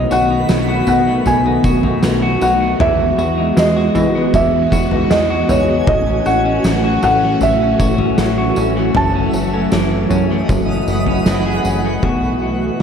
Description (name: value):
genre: dream pop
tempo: 78 BPM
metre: 4/4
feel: straight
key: B mixolydian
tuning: A4 = 441 Hz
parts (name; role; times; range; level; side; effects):
- felt-muted upright piano; melody; 0.0-11.2 s; C#5 to A5; -18 LUFS; right 1 dB; tape echo
- string machine, violas; sustained chords; 0.0-12.8 s; D#3 to F#4; -19 LUFS; right 1 dB; ensemble chorus
- clean electric guitar; arpeggios; 0.0-12.8 s; F#2 to G#4; -20 LUFS; left 4 dB; wide subtle chorus, tape echo
- plucky analog bass; bass; 0.0-12.8 s; F#1 to E3; -20 LUFS; equal; none
- twinkling granular texture; texture; 0.0-12.4 s; D#5 to B5; -28 LUFS; right 2 dB; built-in reverb, tape echo
- oversized low-tuned drum kit; drums; 0.1-12.8 s; kick drum, snare drum, tambourine, toms; -20 LUFS; equal; tape echo
room: moderate plate reverb, RT60 2.9 s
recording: echo-heavy mix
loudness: -13 LUFS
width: side -7 dB against mid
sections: 0.0-12.0 A section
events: none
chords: 0.0 B7; 2.8 Emaj9; 5.9 A6; 9.0 F#m9; 12.0 B7sus4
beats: 0.49 1.26 2.03 | 2.80 3.57 4.34 5.11 | 5.88 6.64 7.41 8.18 | 8.95 9.72 10.49 11.26 | 12.03 12.80